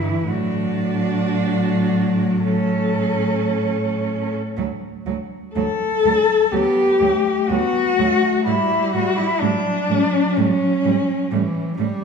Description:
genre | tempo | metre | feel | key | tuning
classical, lyrical piece for cello ensemble | 54-64 BPM | 4/4 | rubato | D major | A4 = 440 Hz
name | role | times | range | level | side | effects
warm cello | melody | 0.0-11.8 s | C#4 to A4 | -20 LUFS | left 3 dB | none
rich cello | second line | 0.0-11.9 s | F#3 to E4 | -26 LUFS | right 8 dB | none
warm cello | accompaniment | 0.0-12.0 s | E3 to B3 | -23 LUFS | equal | none
clear cello | bass | 0.0-11.9 s | D2 to A2 | -25 LUFS | right 2 dB | none
room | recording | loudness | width
wet recital hall reverb, RT60 1.7 s | recorded in a church or concert hall | -17 LUFS | side -6 dB against mid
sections
0.0-4.6 A section; 4.6-12.0 B section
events
none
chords
0.3 D/A; 4.6 D; 8.5 A7

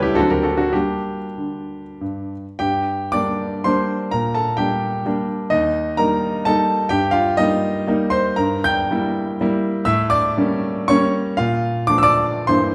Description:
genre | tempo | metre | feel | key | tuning
classical, romantic triple-time dance for piano with dotted rhythms | 91-136 BPM | 3/4 | rubato | G minor | A4 = 440 Hz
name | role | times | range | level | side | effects
clear grand piano | solo | 0.0-12.7 s | C#2 to G6 | -20 LUFS | equal | none
room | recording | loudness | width
wet recital hall reverb, RT60 1.4 s | none | -20 LUFS | mono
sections
0.0-2.6 A section; 2.6-12.7 B section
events
none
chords
0.2 D7; 0.7 Gm; 4.1 Gm/Bb; 5.5 Eb; 6.9 Eb/G; 8.4 Edim/G; 9.9 A7b9; 11.4 Bbmaj7

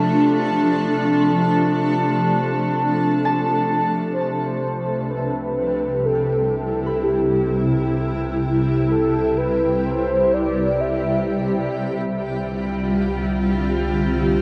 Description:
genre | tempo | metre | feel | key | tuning
ambient | free time | none | none | C major | A4 = 440 Hz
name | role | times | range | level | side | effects
granular cloud pad | sustained chords | 0.0-14.4 s | C3 to A4 | -23 LUFS | equal | built-in reverb
Celtic harp | arpeggios | 0.0-11.7 s | C4 to B5 | -34 LUFS | equal | diffuse ambient delay
bowed-like drone | drone | 0.0-14.4 s | C3 | -31 LUFS | equal | built-in reverb
glass harmonica | texture | 0.0-4.1 s | A5 | -28 LUFS | equal | none
warm velvety synth lead | melody | 4.1-11.5 s | G4 to E5 | -25 LUFS | equal | chorus, diffuse ambient delay
warm sub bass | bass | 4.1-14.4 s | C2 | -34 LUFS | equal | none
room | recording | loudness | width
wet huge ambient reverb, RT60 8.4 s | worn, warbling old tape, cassette tape, warbly pitch drift | -20 LUFS | mono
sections
0.0-4.1 A section; 4.1-14.4 B section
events
fade-in on harp 4.1-14.4; fade-in on sub bass 4.1-14.4; fade-out on synth drone 4.1-14.4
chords
0.0 G7(no3) (rootless); 4.1 Cmaj7; 11.7 G7sus4/C

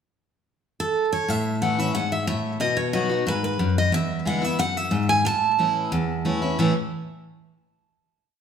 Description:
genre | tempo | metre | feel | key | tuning
bluegrass | 181 BPM | 4/4 | straight | A major | A4 = 437 Hz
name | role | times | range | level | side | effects
picked steel-string acoustic guitar | melody | 0.8-6.2 s | A4 to A5 | -24 LUFS | right 2 dB | tape echo
picked steel-string acoustic guitar | accompaniment | 1.3-6.7 s | E2 to F#4 | -23 LUFS | left 1 dB | none
room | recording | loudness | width
wet large studio reverb, RT60 1.2 s | heard from further back in the room | -21 LUFS | side -7 dB against mid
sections
0.0-1.3 pickup bar; 1.3-6.6 A section; 6.6-7.9 final chord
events
none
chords
0.0 N.C.; 1.3 A; 2.6 B; 3.9 E7; 5.3 A

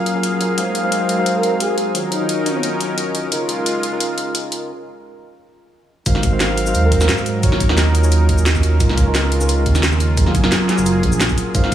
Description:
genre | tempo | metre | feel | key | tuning
liquid drum and bass | 175 BPM | 4/4 | straight | Db major | A4 = 440 Hz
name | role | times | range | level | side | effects
mellow tine electric piano | accompaniment | 0.0-11.7 s | Db3 to F5 | -21 LUFS | equal | medium stereo tremolo, digital delay
warm analog pad | sustained chords | 0.0-11.7 s | Gb3 to F5 | -24 LUFS | equal | chorus
drum and bass drum kit | drums | 0.1-11.7 s | hi-hat, shaker, snare drum | -21 LUFS | equal | high-pass filter on hats, high-pass filter on perc, high-pass filter on snare, high-pass filter on room
breathy flute-like synth lead | melody | 1.4-2.6, 6.8-7.8 s | Eb4 to Db5 | -24 LUFS | equal | wide subtle chorus, cassette tape, dub echo
smooth synth bass | bass | 6.1-11.7 s | Gb1 to Ab2 | -17 LUFS | right 1 dB | none
electronic kick drum | drums | 6.1-11.7 s | none | -18 LUFS | equal | none
room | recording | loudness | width
light reverb, digital ambience | high-pass filter, studio reverb | -15 LUFS | side -11 dB against mid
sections
0.0-6.1 A section; 6.1-11.7 B section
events
build-up 0.0-6.1; break 4.7-6.1; drop 6.1-11.7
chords
0.0 Gbmaj9; 0.6 Ab13; 1.9 Ebm7; 3.3 Db6; 4.7 N.C.; 6.1 Ab13; 7.4 Ebm7; 8.8 Db6; 10.2 Gbmaj9

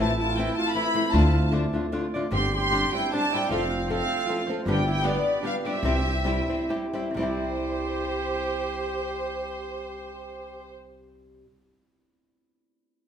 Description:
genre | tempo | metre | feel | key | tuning
mexican folk, mariachi | 127-158 BPM | 3/4 | swing 53% on 8ths, rubato | C major | A4 = 440 Hz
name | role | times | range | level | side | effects
rich studio violin section | melody | 0.0-10.7 s | C5 to C6 | -29 LUFS | equal | none
mellow trumpet | second line | 0.0-10.7 s | B3 to G4 | -33 LUFS | right 4 dB | none
nylon-string guitar | accompaniment | 0.0-11.5 s | G2 to A4 | -31 LUFS | left 2 dB | none
concert harp | arpeggios | 0.0-11.5 s | A3 to E5 | -31 LUFS | right 1 dB | none
upright bass | bass | 0.0-11.4 s | F1 to D2 | -27 LUFS | equal | none
room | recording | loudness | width
wet recital hall reverb, RT60 1.4 s | minimal, uncompressed stereo recording | -23 LUFS | side -8 dB against mid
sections
0.0-7.2 A section; 7.2-10.0 B section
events
slowing down 4.7-7.2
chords
0.0 Am; 1.1 Dm; 2.3 Gsus4; 3.5 F; 4.7 G; 5.8 C

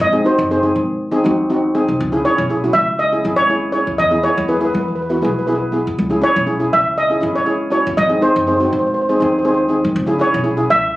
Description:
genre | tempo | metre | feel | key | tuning
calypso | 121 BPM | 4/4 | straight | unclear | A4 = 442 Hz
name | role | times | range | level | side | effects
steel pan | melody | 0.0-11.0 s | B4 to E5 | -16 LUFS | equal | none
upright bass | bass | 0.0-11.0 s | F#1 to E2 | -24 LUFS | equal | none
steel pan | accompaniment | 0.1-10.9 s | B3 to G#4 | -17 LUFS | equal | none
room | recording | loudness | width
moderate studio reverb, RT60 0.5 s | recorded on a phone in the room, club reverb | -14 LUFS | side -17 dB against mid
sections
0.0-11.0 A section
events
none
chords
0.0 G#7; 2.0 C#m7; 4.0 Emaj7; 6.0 C#m7; 8.0 G#7; 10.0 C#m7

